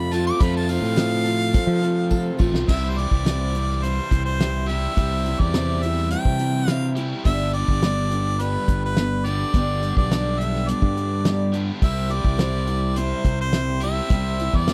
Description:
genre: folk rock and heartland rock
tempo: 105 BPM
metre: 4/4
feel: straight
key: unclear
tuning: A4 = 440 Hz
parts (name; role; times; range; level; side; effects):
- clear harmonica; melody; 0.0-14.7 s; B4 to D6; -30 LUFS; equal; none
- picked acoustic archtop guitar; accompaniment; 0.0-14.7 s; G2 to A4; -31 LUFS; equal; none
- mellow tonewheel organ; sustained chords; 0.0-2.6 s; C4 to F5; -37 LUFS; equal; none
- crunchy overdriven guitar; riff; 0.0-14.7 s; F2 to G4; -33 LUFS; equal; none
- fingered electric bass; bass; 0.0-14.7 s; G1 to F3; -26 LUFS; equal; none
- natural country drum kit; drums; 0.1-14.7 s; crash cymbal, hi-hat, kick drum, snare drum; -24 LUFS; equal; none
- tambourine; percussion; 0.1-2.5 s; none; -48 LUFS; equal; none
room: little or no reverb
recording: dry, close 1970s-style studio recording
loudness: -22 LUFS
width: mono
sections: 0.0-2.7 A section; 2.7-14.7 B section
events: harmonica solo 0.0-2.7; drum fill 2.1-2.7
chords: 0.0 F; 2.7 C; 7.2 G; 11.8 C

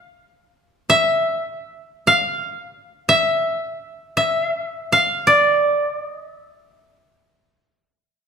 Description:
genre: japanese traditional, Japanese chamber music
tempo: free time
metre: none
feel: none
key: unclear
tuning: A4 = 439 Hz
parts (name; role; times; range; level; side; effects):
- koto; solo; 0.0-8.3 s; E5 to F5; -16 LUFS; equal; none
room: moderate recital hall reverb, RT60 1.5 s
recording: minimal, uncompressed stereo recording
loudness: -16 LUFS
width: side -6 dB against mid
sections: 0.0-8.3 A section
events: none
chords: none

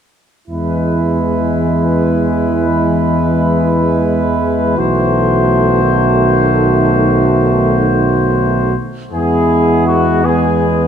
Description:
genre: classical, hymn-like piece for brass band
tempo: free time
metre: none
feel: none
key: E major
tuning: A4 = 441 Hz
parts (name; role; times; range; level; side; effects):
- warm trumpet section; melody; 0.5-10.9 s; F#4 to C5; -19 LUFS; left 5 dB; none
- warm flugelhorn; second line; 0.5-10.9 s; B3 to F#4; -18 LUFS; right 8 dB; none
- bright trombone section; accompaniment; 0.5-10.9 s; G#3 to B3; -20 LUFS; left 2 dB; none
- clear trombone; accompaniment; 0.5-10.9 s; D#3 to B3; -19 LUFS; right 2 dB; none
- mellow tuba; bass; 0.5-10.9 s; B1 to E2; -15 LUFS; left 1 dB; none
room: moderate scoring stage reverb, RT60 2.0 s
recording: none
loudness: -11 LUFS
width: side -8 dB against mid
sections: 0.5-9.1 A section; 9.1-10.9 B section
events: none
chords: 0.5 E; 4.8 B7b9; 9.1 E

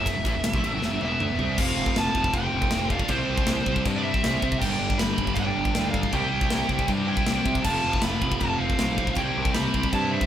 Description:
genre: heavy metal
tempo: 158 BPM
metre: 4/4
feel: straight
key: unclear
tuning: A4 = 440 Hz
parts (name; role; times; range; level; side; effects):
- high-gain lead guitar; melody; 0.0-10.3 s; C5 to B5; -28 LUFS; right 2 dB; distortion
- high-gain distorted guitar; riff; 0.0-10.3 s; E2 to C4; -34 LUFS; left 1 dB; distortion
- scooped high-gain guitar; riff; 0.0-10.3 s; E2 to C4; -32 LUFS; left 8 dB; distortion
- sludgy distorted guitar; riff; 0.0-10.3 s; E2 to C4; -30 LUFS; right 4 dB; overdrive
- fuzz picked electric bass; bass; 0.0-10.2 s; E1 to C3; -30 LUFS; left 1 dB; overdrive
- tight metal drum kit; drums; 0.1-10.3 s; china cymbal, crash cymbal, kick drum, ride cymbal, snare drum, toms; -27 LUFS; left 1 dB; none
- high-gain lead guitar; second line; 1.0-10.3 s; G3 to G4; -36 LUFS; right 2 dB; distortion
room: moderate studio ambience, RT60 0.5 s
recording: band playing live in one room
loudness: -22 LUFS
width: side -10 dB against mid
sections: 0.0-1.6 A section; 1.6-10.3 B section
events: drum fill 0.8-1.6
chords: 0.0 Em; 1.6 F; 3.1 C; 4.6 G; 6.1 C; 7.6 F; 9.2 C

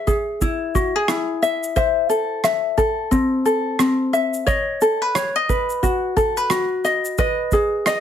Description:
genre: acoustic pop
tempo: 89 BPM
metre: 4/4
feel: swing 60% on 16ths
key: E major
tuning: A4 = 440 Hz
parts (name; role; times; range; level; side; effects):
- ukulele; accompaniment; 0.0-8.0 s; C4 to E5; -18 LUFS; left 2 dB; none
- unplugged drum kit; drums; 0.1-8.0 s; kick drum, rim click, shaker; -24 LUFS; right 2 dB; none
room: moderate studio reverb, RT60 0.6 s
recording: heavily compressed radio sound, multiband compression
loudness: -18 LUFS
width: side -9 dB against mid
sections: 0.0-8.0 A section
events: none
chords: 0.0 E; 1.8 Am; 4.5 Badd9; 7.2 G#m

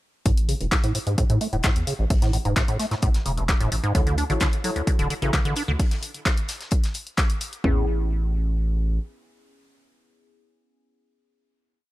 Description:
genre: acid house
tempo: 130 BPM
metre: 4/4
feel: straight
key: A major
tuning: A4 = 436 Hz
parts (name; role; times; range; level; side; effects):
- liquid acid bass; riff; 0.3-7.9 s; A1 to D4; -26 LUFS; equal; chorus, tape echo
- saturated sub bass; bass; 0.3-9.0 s; D1 to A2; -25 LUFS; equal; sidechain pumping
- damped 70s drum kit; drums; 0.3-7.5 s; hi-hat, snare drum; -38 LUFS; left 3 dB; none
- punchy analog drum machine; drums; 0.3-7.8 s; kick drum, toms; -22 LUFS; equal; overdrive
- punchy analog drum machine; drums; 0.3-7.6 s; handclaps, hi-hat; -29 LUFS; left 1 dB; overdrive
- deep mellow chord stab; stabs; 3.9-11.8 s; B3 to C#5; -31 LUFS; left 2 dB; chorus, tape echo
room: little or no reverb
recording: none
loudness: -21 LUFS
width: side -17 dB against mid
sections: 0.3-7.6 groove; 7.6-11.3 final chord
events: filter sweep on acid bass 0.3-5.8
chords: 0.3 A5; 3.9 Dmaj9; 7.6 Amaj9

